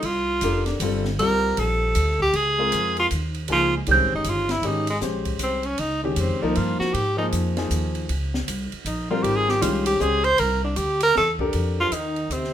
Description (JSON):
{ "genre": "modal jazz", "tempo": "156 BPM", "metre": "3/4", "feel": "swing 64% on 8ths", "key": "Db lydian", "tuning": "A4 = 440 Hz", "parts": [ { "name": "warm tenor saxophone", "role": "melody", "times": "0.0-12.5 s", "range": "Ab3 to C5", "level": "-22 LUFS", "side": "right 1 dB", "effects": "none" }, { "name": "upright bass", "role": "bass", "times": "0.0-12.5 s", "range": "F1 to Ab2", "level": "-26 LUFS", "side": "equal", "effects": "none" }, { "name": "open jazz drum kit", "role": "drums", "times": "0.0-12.5 s", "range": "hi-hat, kick drum, ride cymbal, snare drum", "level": "-32 LUFS", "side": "right 2 dB", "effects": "none" }, { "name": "warm concert grand piano", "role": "accompaniment", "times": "0.4-11.9 s", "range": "Eb3 to C5", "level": "-27 LUFS", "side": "left 2 dB", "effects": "none" }, { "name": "breathy trombone", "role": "second line", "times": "11.8-12.5 s", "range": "C3 to F3", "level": "-31 LUFS", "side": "right 1 dB", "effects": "none" } ], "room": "moderate studio reverb, RT60 0.6 s", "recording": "minimal, uncompressed stereo recording", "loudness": "-20 LUFS", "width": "side -10 dB against mid", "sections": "0.0-2.3 A section; 2.3-11.5 A section", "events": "tenor saxophone solo 0.0-11.5", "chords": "0.0 Fsus4; 2.3 Dbmaj9; 10.4 C9; 11.5 F9sus4", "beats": "| 0.03 0.42 0.80 | 1.18 1.57 1.95 | 2.34 2.72 3.10 | 3.49 3.87 4.26 | 4.64 5.02 5.41 | 5.79 6.17 6.56 | 6.94 7.33 7.71 | 8.09 8.47 8.86 | 9.24 9.62 10.01 | 10.39 10.77 11.16 | 11.54 11.93 12.31" }